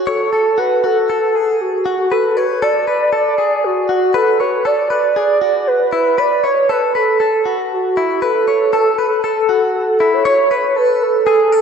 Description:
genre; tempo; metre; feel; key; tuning
indie pop; 118 BPM; 4/4; straight; unclear; A4 = 440 Hz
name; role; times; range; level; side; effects
warbly nostalgic lead; melody; 0.0-11.6 s; F#4 to D5; -14 LUFS; right 2 dB; chorus, analog delay
direct-recorded clean electric guitar; arpeggios; 0.0-11.6 s; E4 to C#5; -18 LUFS; left 4 dB; lush chorus
room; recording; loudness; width
wet lush hall reverb, RT60 2.7 s; dreamy mix soaked in reverb; -13 LUFS; side -6 dB against mid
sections
0.0-10.3 A section; 10.3-11.6 B section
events
none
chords
0.0 F#m; 6.2 Esus4; 10.3 A

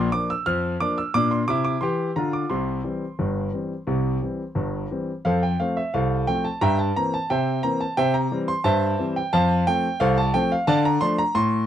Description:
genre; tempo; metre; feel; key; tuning
ragtime piano; 88 BPM; 2/4; straight; F major; A4 = 442 Hz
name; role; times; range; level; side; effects
warm concert grand piano; solo; 0.0-11.7 s; G1 to F6; -20 LUFS; equal; none
room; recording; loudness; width
light reverb; dry, close 1970s-style studio recording; -21 LUFS; side -10 dB against mid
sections
0.0-5.2 A section; 5.2-11.7 B section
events
none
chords
0.0 Bb; 2.5 C; 5.2 F; 6.6 C7/G; 9.3 F; 10.7 Dm

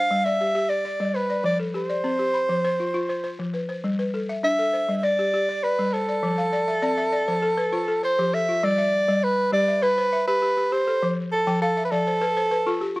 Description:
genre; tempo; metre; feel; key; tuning
west african traditional, West African string and xylophone music; 100 BPM; 4/4; straight; G mixolydian; A4 = 440 Hz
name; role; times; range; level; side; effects
mellow soprano saxophone; melody; 0.0-13.0 s; A4 to F5; -22 LUFS; right 1 dB; none
balafon; arpeggios; 0.0-13.0 s; F3 to B5; -25 LUFS; left 2 dB; none
room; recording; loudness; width
little or no reverb; recorded outdoors, with no room sound; -21 LUFS; side -20 dB against mid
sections
0.0-8.6 A section; 8.6-13.0 B section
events
balafon fill 6.4-8.6, 11.5-13.0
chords
0.0 G; 1.4 F; 3.8 G; 6.2 F; 8.6 G; 11.0 F

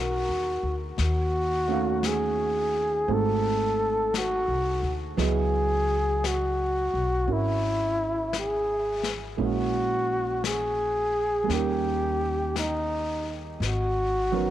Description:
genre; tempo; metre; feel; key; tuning
jazz ballad; 57 BPM; 4/4; swing 67% on 8ths; G# minor; A4 = 441 Hz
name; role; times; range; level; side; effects
breathy flugelhorn; melody; 0.0-14.5 s; D#4 to A4; -26 LUFS; left 1 dB; tape echo
dark concert grand piano; accompaniment; 0.0-14.5 s; F#3 to E#5; -31 LUFS; right 10 dB; none
upright bass; bass; 0.0-14.5 s; G#1 to D#2; -30 LUFS; left 1 dB; none
vintage brush drum kit; drums; 1.0-14.5 s; brushed snare drum, hi-hat, snare drum; -37 LUFS; left 8 dB; none
room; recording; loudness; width
light reverb, studio reverb; 1960s-style stereo with parts hard left and right; -24 LUFS; side -12 dB against mid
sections
0.0-14.5 A section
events
none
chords
0.0 G#m11; 1.0 D#m7b5; 3.1 G#7b9; 5.2 C#m11; 9.4 A#m7b5; 11.5 D#7; 13.6 G#m11

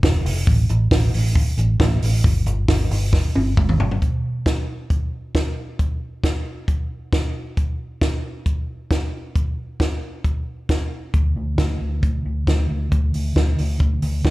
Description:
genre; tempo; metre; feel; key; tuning
jangly indie pop; 135 BPM; 4/4; straight; unclear; A4 = 440 Hz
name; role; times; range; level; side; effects
vintage muted fingered electric bass; bass; 0.0-4.0, 11.1-14.3 s; F1 to D2; -20 LUFS; equal; none
compact cocktail drum kit; drums; 0.0-14.3 s; hi-hat, kick drum, snare drum, toms; -20 LUFS; equal; none
room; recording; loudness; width
little or no reverb; live gig heard through the venue's PA, club reverb; -18 LUFS; side -19 dB against mid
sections
0.0-4.0 A section; 4.0-14.3 B section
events
drum fill 3.1-4.0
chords
none

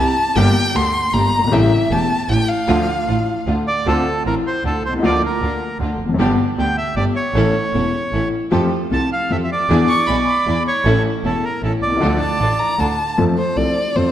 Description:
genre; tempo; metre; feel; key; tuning
tango; 155 BPM; 3/4; rubato; D minor; A4 = 441 Hz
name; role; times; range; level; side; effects
warm violin; second line; 0.0-3.5, 9.9-14.1 s; C5 to C#6; -20 LUFS; left 1 dB; none
clear grand piano; accompaniment; 0.0-14.1 s; E1 to A4; -19 LUFS; left 2 dB; none
rich symphonic string section; stabs; 0.0-13.0 s; A3 to A4; -26 LUFS; right 3 dB; none
clear double bass; bass; 0.0-14.1 s; E1 to F2; -22 LUFS; right 2 dB; none
bandoneon; melody; 3.7-12.8 s; A4 to A5; -21 LUFS; right 2 dB; none
room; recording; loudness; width
wet scoring stage reverb, RT60 1.6 s; none; -15 LUFS; side -11 dB against mid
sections
0.0-3.9 A section; 3.9-13.2 B section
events
violin solo 0.0-3.9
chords
0.4 Gm; 1.5 A7; 2.7 Dm; 3.9 Dm7; 5.0 Bb/D; 6.2 G; 7.3 A; 8.5 Fadd9; 9.7 E7; 10.9 A; 12.0 Dm; 13.2 F

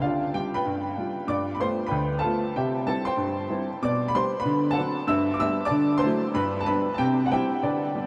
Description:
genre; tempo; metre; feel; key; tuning
jazz, stride piano; 189 BPM; 4/4; swing 61% on 8ths; C major, G major from 3.8 s; A4 = 440 Hz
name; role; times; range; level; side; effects
clear upright piano; solo; 0.0-8.1 s; D2 to E6; -26 LUFS; equal; lush chorus, analog delay
room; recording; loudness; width
wet huge ambient reverb, RT60 7.7 s; dreamy mix soaked in reverb; -25 LUFS; mono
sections
0.0-8.1 A section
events
none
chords
0.0 G7/D; 1.3 G9; 2.5 C; 3.8 G/B; 4.5 D7; 5.1 G; 5.7 D9; 6.4 G; 7.0 C

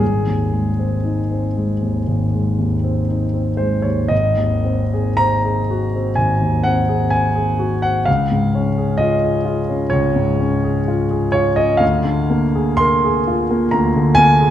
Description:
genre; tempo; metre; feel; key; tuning
classical, romantic nocturne for solo piano; 52-68 BPM; 4/4; rubato; Ab major; A4 = 441 Hz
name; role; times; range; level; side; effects
warm grand piano; solo; 0.0-14.5 s; Ab1 to C6; -15 LUFS; equal; none
room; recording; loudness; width
wet concert hall reverb, RT60 1.7 s; minimal, uncompressed stereo recording; -15 LUFS; side -11 dB against mid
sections
0.0-4.1 A section; 4.1-14.5 B section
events
none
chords
0.0 Ab; 4.1 Ab7; 8.1 Db; 11.8 Bb7/D

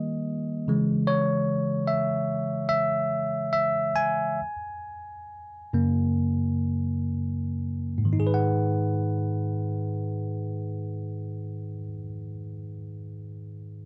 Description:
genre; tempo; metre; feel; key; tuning
pop; 58-75 BPM; 4/4; straight; G# minor; A4 = 442 Hz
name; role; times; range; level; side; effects
bell-like tine electric piano; accompaniment; 0.0-13.9 s; F#2 to G#5; -25 LUFS; equal; none
room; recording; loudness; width
little or no reverb; dry, close 1970s-style studio recording; -24 LUFS; side -27 dB against mid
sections
0.0-8.2 A section; 8.2-12.3 B section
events
tine electric piano solo 0.0-8.2; slowing down 1.1-8.2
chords
0.0 D#; 0.7 C#m; 4.4 F#add9; 8.2 G#m7

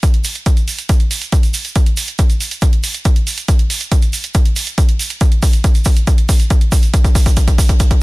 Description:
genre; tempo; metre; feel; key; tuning
trance; 139 BPM; 4/4; straight; none; none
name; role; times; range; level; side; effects
electronic hi-hat; drums; 0.0-8.0 s; none; -24 LUFS; right 4 dB; overdrive
electronic kick drum; drums; 0.0-8.0 s; none; -11 LUFS; equal; none
tube shaker; percussion; 0.0-7.9 s; none; -25 LUFS; right 4 dB; none
room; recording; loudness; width
little or no reverb; dense, heavily limited modern master; -12 LUFS; side -22 dB against mid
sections
0.0-8.0 A section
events
build-up 0.0-8.0; drum fill 1.8-8.0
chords
none

